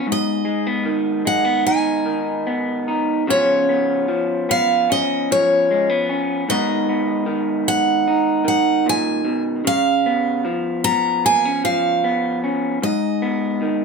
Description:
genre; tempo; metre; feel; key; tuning
acoustic folk-pop ballad; 75 BPM; 4/4; straight; unclear; A4 = 440 Hz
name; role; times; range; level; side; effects
electric guitar through a small old amp; accompaniment; 0.0-13.8 s; Ab2 to Gb4; -20 LUFS; equal; none
picked steel-string acoustic guitar; melody; 0.1-13.8 s; Db5 to Bb5; -19 LUFS; right 1 dB; none
room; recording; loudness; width
moderate studio reverb, RT60 0.8 s; none; -17 LUFS; side -4 dB against mid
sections
0.0-13.8 A section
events
none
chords
0.1 Abm; 3.3 Db7; 6.5 Abm7; 9.6 Db7; 12.8 Abm

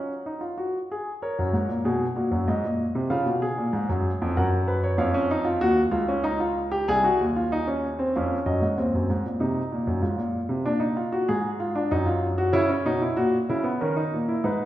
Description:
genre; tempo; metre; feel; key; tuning
classical, baroque-style 3-part fugue for grand piano; 95 BPM; 3/4; straight; F# major; A4 = 441 Hz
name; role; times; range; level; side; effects
warm grand piano; solo; 0.0-14.7 s; B#1 to A#5; -22 LUFS; equal; none
room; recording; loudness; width
wet recital hall reverb, RT60 1.4 s; recorded in a church or concert hall; -22 LUFS; side -13 dB against mid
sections
0.0-1.2 A section; 1.2-8.8 B section; 8.8-14.7 A section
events
none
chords
0.0 F#5; 1.2 F#; 2.5 G#7; 3.1 C# (rootless); 4.4 F#; 5.0 C#/E#; 6.2 D#7/C#; 6.9 G#/B#; 8.1 C#/E#; 8.8 G#7/D# (rootless); 10.0 G#69; 10.7 A#7; 11.9 D#m/F#; 12.5 A#dim; 13.8 D#5

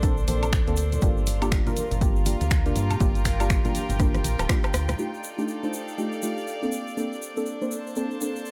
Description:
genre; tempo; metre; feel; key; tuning
deep house; 121 BPM; 4/4; swing 60% on 16ths; G minor; A4 = 440 Hz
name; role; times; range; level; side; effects
warbly tape-like pad; sustained chords; 0.0-8.5 s; Bb3 to C6; -41 LUFS; equal; chorus, built-in reverb, phaser, vintage 12-bit sampler grit, sidechain pumping
deep mellow chord stab; stabs; 0.0-8.5 s; A3 to C5; -32 LUFS; equal; chorus, sidechain pumping, tape echo
round analog bass; bass; 0.0-4.9 s; D1 to G2; -29 LUFS; equal; tube saturation
deep house drum kit; drums; 0.0-5.0 s; finger snaps, hi-hat, rim click, woodblock; -33 LUFS; equal; overdrive, small room ambience
electronic kick drum; drums; 0.0-4.6 s; none; -26 LUFS; equal; overdrive, small room ambience
tube shaker; percussion; 0.0-8.5 s; none; -43 LUFS; equal; none
rich chamber string section; texture; 0.0-8.5 s; Bb3 to A5; -38 LUFS; equal; sidechain pumping
congas; percussion; 0.3-5.0 s; none; -38 LUFS; equal; none
room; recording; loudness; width
digital ambience; none; -25 LUFS; mono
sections
0.0-5.0 A section; 5.0-8.5 B section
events
drum fill 4.0-5.0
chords
0.0 Bbmaj9; 1.0 Gm7; 5.0 F13; 6.7 Bbmaj9

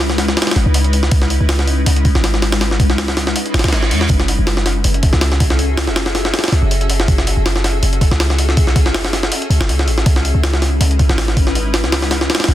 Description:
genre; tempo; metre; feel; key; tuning
drum and bass, jungle; 161 BPM; 4/4; swing 54% on 16ths; F# minor; A4 = 437 Hz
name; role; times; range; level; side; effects
granular cloud pad; sustained chords; 0.0-12.5 s; G#3 to E5; -22 LUFS; left 2 dB; built-in reverb, vintage 12-bit sampler grit
warm 808-style bass; bass; 0.0-12.5 s; F#1 to E2; -16 LUFS; equal; none
jungle sampler-style drum kit; drums; 0.1-12.5 s; hi-hat, kick drum, snare drum; -16 LUFS; equal; small room reverb
reverse cymbal; sound effects; 3.5-4.1 s; none; -25 LUFS; right 3 dB; none
room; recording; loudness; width
little or no reverb; dense, heavily limited modern master; -12 LUFS; side -13 dB against mid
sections
0.0-12.5 A section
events
reverse cymbal 3.5-4.1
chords
0.0 C#m9; 4.1 F#m9; 10.1 C#m9

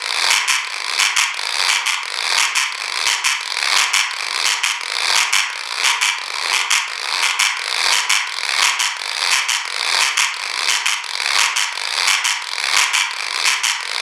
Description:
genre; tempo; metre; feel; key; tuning
latin; 173 BPM; 4/4; straight; none; none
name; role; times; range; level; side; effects
guiro; percussion; 0.3-14.0 s; none; -16 LUFS; equal; none
room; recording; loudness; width
light reverb; none; -16 LUFS; mono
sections
0.6-11.7 A section; 11.7-14.0 B section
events
none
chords
none

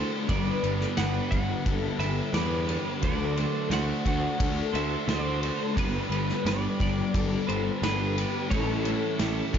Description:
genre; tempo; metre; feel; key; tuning
rock, shoegaze and dream pop; 88 BPM; 4/4; straight; unclear; A4 = 439 Hz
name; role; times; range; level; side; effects
picked plugged-in twelve-string acoustic guitar; arpeggios; 0.0-9.6 s; F#4 to C5; -35 LUFS; left 7 dB; ensemble chorus, diffuse ambient delay
overdriven electric guitar; riff; 0.0-9.6 s; A2 to C5; -33 LUFS; right 10 dB; reverse reverb
thick fuzz guitar; riff; 0.0-9.6 s; G2 to D4; -32 LUFS; left 6 dB; distortion, wide subtle chorus
twelve-string electric guitar; melody; 0.3-9.6 s; B4 to F#5; -36 LUFS; right 1 dB; lush chorus, diffuse ambient delay
fuzz picked electric bass; bass; 0.3-9.6 s; G1 to E2; -30 LUFS; equal; overdrive
loose indie drum kit; drums; 0.3-9.6 s; kick drum, ride cymbal, snare drum; -31 LUFS; equal; none
room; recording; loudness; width
moderate church reverb, RT60 2.8 s; dreamy mix soaked in reverb, nothing above 7.5 kHz; -25 LUFS; side -8 dB against mid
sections
0.0-9.6 A section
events
none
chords
0.3 Gmaj7; 3.0 D7; 5.8 G; 8.5 A7

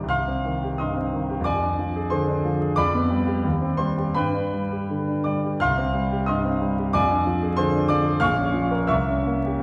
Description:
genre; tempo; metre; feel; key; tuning
classical, romantic character piece for solo piano; 76-96 BPM; 2/4; rubato; C minor; A4 = 445 Hz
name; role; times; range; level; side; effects
clear concert grand piano; solo; 0.0-9.6 s; Bb1 to F6; -23 LUFS; equal; none
room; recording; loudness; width
wet recital hall reverb, RT60 1.3 s; heard from further back in the room, vinyl crackle; -23 LUFS; mono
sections
0.1-9.6 A section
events
none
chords
0.1 Cm; 1.5 Ddim/F; 2.8 G7/F; 3.4 Cm/Eb; 4.2 G; 5.6 Cm; 7.0 Ddim/F; 8.2 Bbm; 8.9 C7b9

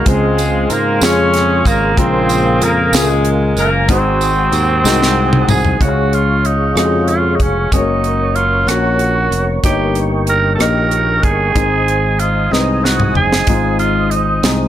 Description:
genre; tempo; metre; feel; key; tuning
slow gospel; 63 BPM (dotted quarters); 6/8; straight; Db major; A4 = 440 Hz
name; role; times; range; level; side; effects
breathy tenor saxophone; melody; 0.0-14.5 s; Ab3 to Bb4; -17 LUFS; right 3 dB; none
warm horn section; melody; 0.0-5.5 s; C4 to Db5; -19 LUFS; left 3 dB; tape echo
warm baby grand piano; accompaniment; 0.0-14.7 s; G2 to F5; -19 LUFS; left 4 dB; none
percussive tonewheel organ; sustained chords; 0.0-14.7 s; Ab4 to Eb6; -22 LUFS; right 1 dB; slow rotary speaker, chorus vibrato
modern bright fingered electric bass; bass; 0.0-14.7 s; F1 to Ab2; -17 LUFS; equal; none
tight funk drum kit; drums; 0.1-14.6 s; hi-hat, kick drum, rim click, snare drum, toms; -17 LUFS; equal; none
tambourine; percussion; 0.4-5.8 s; none; -25 LUFS; right 7 dB; none
room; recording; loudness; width
small room ambience; none; -11 LUFS; side -11 dB against mid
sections
0.0-5.8 A section; 5.8-14.7 B section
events
drum fill 4.8-5.8, 12.5-13.5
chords
0.1 Dbmaj7; 2.0 Bbm7; 3.9 Ab7; 5.8 Db; 7.7 Gb; 9.6 Eb7/G; 11.6 Ab

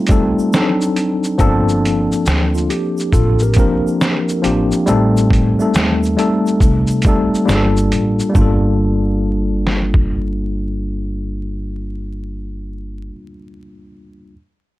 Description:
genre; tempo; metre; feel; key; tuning
lo-fi hip hop; 69 BPM; 4/4; swing 66% on 16ths; G minor; A4 = 440 Hz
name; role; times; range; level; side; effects
mellow tine electric piano; accompaniment; 0.0-14.4 s; F3 to Bb4; -17 LUFS; left 1 dB; medium stereo tremolo, low-pass filter
trip hop sampler-style drum kit; drums; 0.1-10.1 s; hi-hat, kick drum, shaker, snare drum; -16 LUFS; equal; none
tube shaker; percussion; 0.1-8.8 s; none; -40 LUFS; right 5 dB; none
upright bass; bass; 1.4-13.1 s; G1 to Eb2; -19 LUFS; equal; none
mellow tine electric piano; second line; 2.5-4.7 s; D4 to Bb4; -24 LUFS; right 2 dB; medium stereo tremolo, low-pass filter, tape echo
room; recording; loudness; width
moderate studio reverb, RT60 0.6 s; vinyl crackle; -13 LUFS; side -17 dB against mid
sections
0.0-8.3 A section; 8.3-11.8 B section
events
break 0.0-1.4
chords
0.0 Am7b5; 0.5 D7b9; 1.4 Gm11; 4.9 Am7b5; 7.5 Gm9

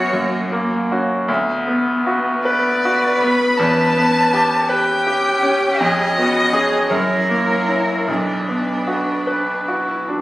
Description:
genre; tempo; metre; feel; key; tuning
classical, slow romantic movement for piano quartet; 53 BPM (dotted quarters); 6/8; uneven beats, rubato; B minor; A4 = 440 Hz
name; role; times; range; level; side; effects
warm violin; melody; 0.0-10.0 s; B4 to B5; -21 LUFS; left 1 dB; none
rich cello; second line; 0.0-9.9 s; D4 to B4; -20 LUFS; right 1 dB; none
bright grand piano; accompaniment; 0.0-10.2 s; B1 to B4; -18 LUFS; equal; none
warm viola; accompaniment; 0.0-10.2 s; A#3 to F#4; -27 LUFS; equal; none
room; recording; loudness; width
moderate scoring stage reverb, RT60 1.8 s; recorded on a phone in the room, studio reverb; -15 LUFS; side -17 dB against mid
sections
0.0-10.2 A section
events
none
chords
0.1 F#; 1.3 Bm/D; 3.6 C#m7b5/E; 5.8 C#7/E#; 6.9 F#7; 8.1 Bm

